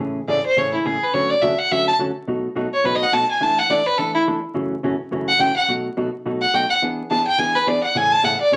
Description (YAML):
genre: country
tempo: 211 BPM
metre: 4/4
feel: swing 61% on 8ths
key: A major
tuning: A4 = 440 Hz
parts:
  - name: hollow-body jazz guitar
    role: accompaniment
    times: 0.0-8.6 s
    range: F#2 to A4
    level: -26 LUFS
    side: equal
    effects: none
  - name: clear fiddle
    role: melody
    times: 0.3-8.6 s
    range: E4 to A5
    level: -20 LUFS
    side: equal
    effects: none
room: wet studio reverb, RT60 0.5 s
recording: vinyl crackle, nothing above 10.5 kHz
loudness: -20 LUFS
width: mono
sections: 0.0-8.6 A section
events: fiddle solo 0.0-8.6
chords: 0.0 Amaj7; 1.1 Dmaj7; 2.3 B7; 3.4 E7sus4; 4.5 F#m7; 5.7 B7; 6.8 E7; 8.0 Amaj7